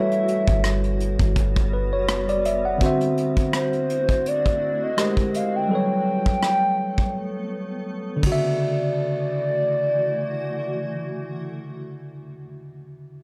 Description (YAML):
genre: contemporary R&B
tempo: 83 BPM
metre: 4/4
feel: swing 54% on 16ths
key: D major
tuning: A4 = 440 Hz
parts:
  - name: hollow clarinet-like synth lead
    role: melody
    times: 0.0-12.2 s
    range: C5 to G5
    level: -27 LUFS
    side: equal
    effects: chorus, analog delay
  - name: tine electric piano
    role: accompaniment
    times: 0.0-13.2 s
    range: C#3 to F#5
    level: -27 LUFS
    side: equal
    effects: none
  - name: granular cloud pad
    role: sustained chords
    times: 0.0-12.2 s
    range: D3 to A4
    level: -36 LUFS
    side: equal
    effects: built-in reverb
  - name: soft brush drum kit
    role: drums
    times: 0.1-8.4 s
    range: hi-hat, kick drum, ride cymbal, rim click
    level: -27 LUFS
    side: equal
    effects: none
  - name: warm 808-style bass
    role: bass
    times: 0.5-2.8 s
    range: F#1 to G1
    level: -26 LUFS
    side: equal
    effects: none
room: studio reverb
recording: dry, gritty hardware recording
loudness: -23 LUFS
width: mono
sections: 0.0-8.6 A section; 8.6-11.5 B section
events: break 7.1-8.6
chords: 0.0 Gmaj9#11; 2.8 D9; 5.0 G#maj9; 5.7 Gmaj9#11; 8.2 Dmaj9